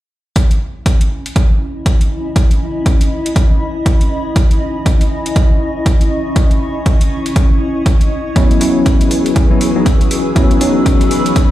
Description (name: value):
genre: deep house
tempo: 120 BPM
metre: 4/4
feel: swing 60% on 16ths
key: C# minor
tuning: A4 = 438 Hz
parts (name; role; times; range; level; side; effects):
- electronic hi-hat; drums; 0.4-11.5 s; none; -25 LUFS; equal; overdrive
- electronic kick drum; drums; 0.4-11.5 s; none; -12 LUFS; equal; overdrive
- granular cloud pad; texture; 1.0-11.5 s; C#4 to E6; -20 LUFS; equal; built-in reverb, sidechain pumping
- soft string machine; sustained chords; 8.4-11.5 s; E3 to B4; -21 LUFS; left 2 dB; phaser, ensemble chorus, vintage 12-bit sampler grit, sidechain pumping
- mellow tine electric piano; stabs; 8.4-11.5 s; F#3 to E4; -14 LUFS; left 1 dB; medium stereo tremolo, sidechain pumping, tape echo
room: little or no reverb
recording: played on a big sound system in a bare room, large studio reverb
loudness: -11 LUFS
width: side -14 dB against mid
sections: 0.4-11.5 A section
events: none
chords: 0.4 C#m9; 8.4 F#7sus4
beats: | 0.36 0.86 1.36 1.86 | 2.36 2.86 3.36 3.86 | 4.36 4.86 5.36 5.86 | 6.36 6.86 7.36 7.86 | 8.36 8.86 9.36 9.86 | 10.36 10.86 11.36